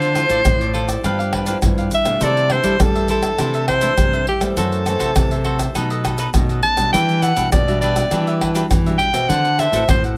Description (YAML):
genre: samba and choro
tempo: 102 BPM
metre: 4/4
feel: straight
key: unclear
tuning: A4 = 440 Hz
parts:
  - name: clear soprano saxophone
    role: melody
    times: 0.0-10.0 s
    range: G4 to A5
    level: -21 LUFS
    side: equal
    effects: none
  - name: cavaquinho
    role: accompaniment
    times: 0.0-10.2 s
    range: D4 to F#5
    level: -29 LUFS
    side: equal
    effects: none
  - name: nylon-string guitar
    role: accompaniment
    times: 0.0-10.2 s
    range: F#2 to B4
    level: -28 LUFS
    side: equal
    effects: none
  - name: nylon-string guitar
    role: bass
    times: 0.0-10.2 s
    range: F#2 to G3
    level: -24 LUFS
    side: equal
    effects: none
  - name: egg shaker, pandeiro, tamborim and surdo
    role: percussion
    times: 0.0-10.2 s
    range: none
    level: -23 LUFS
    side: equal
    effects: none
room: light reverb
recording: close, detailed microphones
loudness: -18 LUFS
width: mono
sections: 0.0-10.2 A section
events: none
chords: 0.0 Dm9; 1.0 G13; 2.2 C69; 4.6 F#m7b5; 5.8 B7; 6.9 Em9; 9.3 D6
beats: 0.45 1.04 1.63 | 2.22 2.81 3.40 3.99 | 4.58 5.17 5.76 6.35 | 6.94 7.53 8.12 8.71 | 9.30 9.89